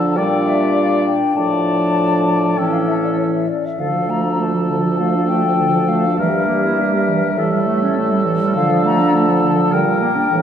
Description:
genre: quick classical-period movement for wind quintet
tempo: 100 BPM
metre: 4/4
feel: straight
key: D minor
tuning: A4 = 441 Hz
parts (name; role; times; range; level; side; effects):
- mellow hollow silver concert flute; melody; 0.0-10.4 s; C#5 to Bb5; -21 LUFS; left 7 dB; none
- warm oboe; second line; 0.0-10.4 s; A4 to D5; -22 LUFS; left 1 dB; none
- warm French horn; accompaniment; 0.0-10.4 s; E3 to G3; -21 LUFS; right 1 dB; none
- mellow bassoon; bass; 0.0-10.4 s; D2 to D3; -21 LUFS; right 2 dB; none
- bright clarinet; accompaniment; 0.2-10.4 s; D3 to E4; -21 LUFS; right 3 dB; none
room: wet concert hall reverb, RT60 2.2 s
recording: heard from further back in the room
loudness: -14 LUFS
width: side -8 dB against mid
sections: 0.0-10.4 A section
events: none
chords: 0.2 Gm/Bb; 1.4 Dm/A; 2.6 A; 3.8 Dm; 6.2 Edim/G; 7.4 A7; 8.6 Dm; 9.7 Gm/Bb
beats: 0.17 0.76 | 1.37 1.98 2.58 3.18 | 3.79 4.39 4.99 5.58 | 6.18 6.78 7.37 7.97 | 8.55 9.14 9.73 10.32

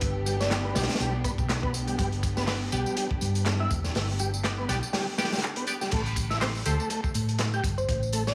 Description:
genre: breakbeat, breaks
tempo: 122 BPM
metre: 4/4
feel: swing 57% on 16ths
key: unclear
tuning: A4 = 440 Hz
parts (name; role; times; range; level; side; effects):
- thumb-piano-like synth pluck; melody; 0.0-0.8, 7.8-8.3 s; C5 to D5; -36 LUFS; equal; chorus, small speaker sound, analog delay
- muted studio string section; sustained chords; 0.0-5.9 s; B3 to G4; -38 LUFS; equal; sidechain pumping
- hollow-body short-scale fingered electric bass; bass; 0.0-8.3 s; E1 to A2; -32 LUFS; equal; none
- crunchy breakbeat drum kit; drums; 0.0-8.3 s; crash cymbal, hi-hat, kick drum, snare drum; -33 LUFS; equal; none
- garage drum kit; drums; 0.0-8.3 s; handclaps, hi-hat, tambourine; -39 LUFS; equal; none
- tonewheel organ; riff; 0.3-8.2 s; G3 to G4; -36 LUFS; equal; chorus vibrato, overdrive, analog delay
- band-passed chord stab; stabs; 0.5-6.7 s; A3 to D5; -39 LUFS; equal; phaser, analog delay
room: light reverb, small room ambience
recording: echo-heavy mix, studio ambience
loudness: -28 LUFS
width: mono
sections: 0.0-5.9 A section; 5.9-8.3 A section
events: drop 0.0-5.9, 5.9-8.3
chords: 0.0 G; 5.9 Am7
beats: | 0.02 0.51 1.00 1.49 | 1.99 2.48 2.97 3.46 | 3.95 4.44 4.93 5.43 | 5.92 6.41 6.90 7.39 | 7.89

